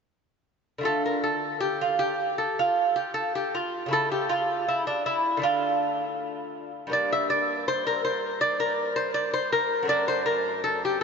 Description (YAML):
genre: classical, baroque-style dance for lute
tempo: 80 BPM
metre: 4/4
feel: rubato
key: D minor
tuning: A4 = 440 Hz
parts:
  - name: lute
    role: solo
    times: 0.8-11.0 s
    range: F#2 to E5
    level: -24 LUFS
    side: equal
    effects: none
room: wet huge ambient reverb, RT60 4.1 s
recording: heard from further back in the room, nothing above 7.7 kHz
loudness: -24 LUFS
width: side -5 dB against mid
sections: 0.9-11.0 A section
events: none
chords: 0.9 Dm; 3.9 A/C#; 5.4 Dm; 6.9 Gm; 9.9 D/F#